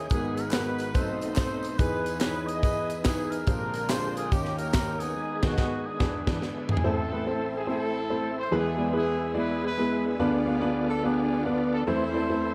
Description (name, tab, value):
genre	uptempo gospel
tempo	143 BPM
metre	4/4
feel	swing 64% on 8ths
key	A harmonic minor from 6.8 s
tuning	A4 = 440 Hz
part	mellow horn section	melody	0.0-12.5 s	A#3 to D#5	-34 LUFS	equal	delay
part	warm oboe	melody	0.0-6.4 s	F#4 to D#5	-38 LUFS	equal	delay
part	warm baby grand piano	accompaniment	0.0-12.5 s	G#1 to F5	-32 LUFS	equal	none
part	bright tonewheel organ	sustained chords	0.0-12.5 s	B#2 to G5	-36 LUFS	equal	slow rotary speaker, overdrive, chorus vibrato
part	tight funk drum kit	drums	0.1-6.8 s	crash cymbal, hi-hat, kick drum, snare drum, toms	-30 LUFS	equal	none
part	tambourine and handclaps	percussion	0.1-5.1 s	none	-45 LUFS	equal	none
room	moderate plate reverb, RT60 1.2 s, small room ambience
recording	dreamy mix soaked in reverb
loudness	-27 LUFS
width	mono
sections	0.0-6.8 A section; 6.8-12.5 B section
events	band accent 5.2-6.8; drum fill 6.4-6.8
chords	0.1 G#m9; 1.0 B7b9; 1.8 Emaj7; 3.5 A#13; 4.3 D#7; 5.2 G#m/D#; 6.0 E7; 6.8 Am; 8.5 E; 10.2 Bdim/D; 11.9 Am/E